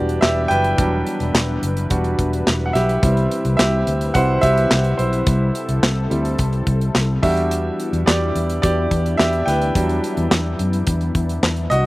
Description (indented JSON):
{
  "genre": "piano-driven pop",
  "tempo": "107 BPM",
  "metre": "4/4",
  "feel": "straight",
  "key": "E minor",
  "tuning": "A4 = 442 Hz",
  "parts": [
    { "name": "clear baby grand piano", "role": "accompaniment", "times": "0.0-11.9 s", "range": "F#3 to G5", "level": "-20 LUFS", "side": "right 1 dB", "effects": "none" },
    { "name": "lush unison pad", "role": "sustained chords", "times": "0.0-11.9 s", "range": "C3 to B4", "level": "-28 LUFS", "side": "left 3 dB", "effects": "chorus" },
    { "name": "vintage muted fingered electric bass", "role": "bass", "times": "0.0-11.9 s", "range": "E1 to F#2", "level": "-20 LUFS", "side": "equal", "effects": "none" },
    { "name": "modern studio drum kit", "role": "drums", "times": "0.1-11.8 s", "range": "handclaps, hi-hat, kick drum, snare drum", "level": "-20 LUFS", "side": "equal", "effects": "none" }
  ],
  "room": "little or no reverb",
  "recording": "recorded outdoors, with no room sound",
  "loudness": "-16 LUFS",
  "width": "side -19 dB against mid",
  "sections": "0.0-11.9 A section",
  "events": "grand piano solo 0.0-11.9",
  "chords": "0.0 Em7; 3.0 C; 7.2 Em7"
}